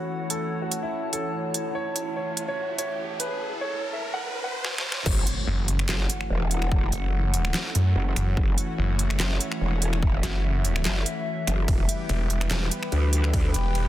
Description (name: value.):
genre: heavy wobble dubstep.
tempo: 145 BPM.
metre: 4/4.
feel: swing 54% on 16ths, half-time.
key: F# phrygian.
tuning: A4 = 440 Hz.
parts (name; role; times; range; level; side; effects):
warm concert grand piano; melody; 0.0-5.0 s; E4 to F#5; -32 LUFS; right 1 dB; low-pass filter, tape echo.
lush unison pad; sustained chords; 0.0-13.9 s; E3 to G4; -34 LUFS; equal; chorus, sidechain pumping.
riser and impact; sound effects; 0.1-6.7 s; none; -34 LUFS; equal; none.
warbly tape-like pad; texture; 0.0-13.9 s; E4 to B5; -35 LUFS; left 2 dB; chorus, built-in reverb, sidechain pumping.
dubstep drum kit; drums; 0.3-13.8 s; crash cymbal, finger snaps, handclaps, hi-hat, ride cymbal, snare drum; -29 LUFS; right 1 dB; high-pass filter on hats, high-pass filter on snare, high-pass filter on cymbals.
growl bass; bass; 5.1-13.5 s; E1 to D2; -25 LUFS; equal; chorus, overdrive.
electronic kick drum; drums; 5.1-13.4 s; none; -24 LUFS; equal; none.
snarling distorted saw bass; bass; 5.5-13.9 s; E1 to F#2; -24 LUFS; equal; distortion, overdrive.
room: digital ambience.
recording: dense, heavily limited modern master, high-pass filter.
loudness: -23 LUFS.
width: side -14 dB against mid.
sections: 0.0-5.1 A section; 5.1-13.9 B section.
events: build-up 0.0-5.1; filter sweep 0.0-5.1; riser 0.1-5.1; drum fill 4.6-5.1; drop 5.1-13.9; impact 5.1-6.7.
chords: 0.0 F#m7; 11.7 Em.